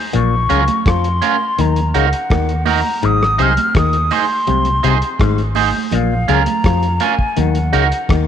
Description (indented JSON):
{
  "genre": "roots reggae",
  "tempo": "83 BPM",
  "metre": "4/4",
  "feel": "straight",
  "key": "Ab mixolydian",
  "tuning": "A4 = 441 Hz",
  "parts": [
    { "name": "auto-wah clav", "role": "riff", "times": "0.1-8.3 s", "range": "Ab2 to F3", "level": "-22 LUFS", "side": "left 12 dB", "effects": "none" },
    { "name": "vintage muted fingered electric bass", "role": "bass", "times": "0.1-8.3 s", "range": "Ab1 to F2", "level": "-17 LUFS", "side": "equal", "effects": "none" },
    { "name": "cloth-damped thuddy drum kit", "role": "drums", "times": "0.1-8.3 s", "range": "hi-hat, kick drum, rim click", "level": "-21 LUFS", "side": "equal", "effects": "vintage 12-bit sampler grit" },
    { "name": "congas", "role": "percussion", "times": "0.1-8.3 s", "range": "none", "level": "-26 LUFS", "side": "right 11 dB", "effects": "none" },
    { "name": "hollow concert flute", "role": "melody", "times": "0.2-8.3 s", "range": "F5 to F6", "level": "-19 LUFS", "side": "left 1 dB", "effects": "none" },
    { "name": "electric guitar at the edge of break-up", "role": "accompaniment", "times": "0.5-7.9 s", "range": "Db4 to C5", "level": "-20 LUFS", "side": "right 10 dB", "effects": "none" }
  ],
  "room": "light reverb",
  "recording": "1960s-style stereo with parts hard left and right",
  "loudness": "-13 LUFS",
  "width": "side -9 dB against mid",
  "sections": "0.0-8.3 A section",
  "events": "none",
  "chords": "0.1 Bbm; 1.6 Ebm; 3.0 Ab; 5.9 Bbm; 7.4 Ebm"
}